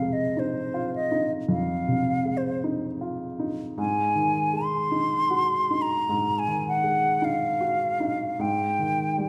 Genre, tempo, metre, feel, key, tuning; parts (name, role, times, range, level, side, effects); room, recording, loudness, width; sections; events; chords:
classical, impressionist duo for flute and grand piano; 50-56 BPM; 4/4; rubato; A4 = 440 Hz
mellow hollow silver concert flute; melody; 0.0-9.3 s; C5 to C6; -27 LUFS; equal
dark grand piano; accompaniment; 0.0-9.3 s; F2 to Gb4; -30 LUFS; equal
wet recital hall reverb, RT60 1.3 s; -26 LUFS; mono
0.0-9.3 A section
0.0 Fm7; 3.8 Ab7; 8.4 Eb/Ab